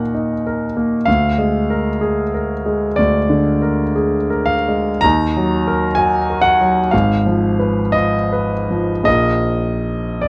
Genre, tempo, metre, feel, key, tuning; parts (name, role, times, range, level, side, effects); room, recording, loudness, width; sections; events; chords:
classical, romantic nocturne for solo piano; 51-66 BPM; 4/4; rubato; A4 = 440 Hz
warm concert grand piano; solo; 0.0-10.3 s; Ab1 to Bb5; -17 LUFS; equal
light reverb; dark, warm production; -17 LUFS; mono
0.0-10.3 A section
0.0 Ebm; 1.1 Bb7/D; 5.0 Ebm; 6.9 Fdim/Ab; 9.1 Bb5